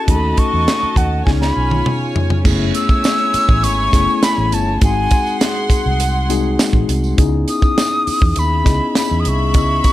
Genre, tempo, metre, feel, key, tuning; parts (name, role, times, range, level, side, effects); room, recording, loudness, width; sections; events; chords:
lush 1970s-style soul; 101 BPM; 4/4; straight; A4 = 440 Hz
breathy concert flute; melody; 0.0-9.9 s; F#5 to E6; -19 LUFS; left 1 dB
clear studio string section; second line; 0.0-9.9 s; E4 to B#5; -25 LUFS; right 1 dB
mellow tine electric piano; accompaniment; 0.0-9.9 s; G#3 to D#5; -21 LUFS; left 4 dB; slow stereo tremolo
vintage muted fingered electric bass; bass; 0.1-9.8 s; F#1 to E2; -18 LUFS; equal
tight funk drum kit; drums; 0.1-9.9 s; crash cymbal, hi-hat, kick drum, snare drum, toms; -16 LUFS; right 1 dB
tambourine; percussion; 2.5-9.9 s; -32 LUFS; right 8 dB
studio ambience; -13 LUFS; side -15 dB against mid
0.0-2.4 A section; 2.4-9.9 B section
flute solo 0.0-2.4; drum fill 1.3-2.4
0.1 D#m7b5; 1.3 C#7; 2.4 F#m11; 4.8 G#7; 7.2 C#m9